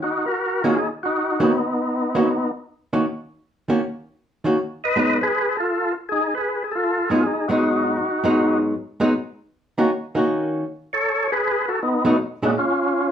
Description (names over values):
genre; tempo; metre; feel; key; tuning
jazz; 158 BPM; 4/4; swing 66% on 8ths; Eb minor; A4 = 442 Hz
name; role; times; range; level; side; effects
percussive tonewheel organ; melody; 0.0-2.5, 4.8-8.6, 10.9-13.1 s; Cb4 to Eb5; -20 LUFS; equal; slow rotary speaker, overdrive
archtop guitar, miked and amplified; accompaniment; 0.6-12.5 s; Ab2 to Gb4; -19 LUFS; equal; none
room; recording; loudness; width
wet studio reverb, RT60 0.6 s; band playing live in one room; -19 LUFS; side -8 dB against mid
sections
0.0-13.1 A section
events
none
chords
0.0 Ebm7; 4.9 Abm7; 9.5 Ebm7; 11.0 B7; 12.6 Bbm (rootless)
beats
0.01 | 0.39 0.77 1.15 1.53 | 1.91 2.29 2.67 3.05 | 3.43 3.81 4.19 4.57 | 4.95 5.33 5.71 6.09 | 6.47 6.85 7.23 7.61 | 7.99 8.37 8.75 9.13 | 9.51 9.89 10.27 10.65 | 11.03 11.41 11.79 12.17 | 12.55 12.93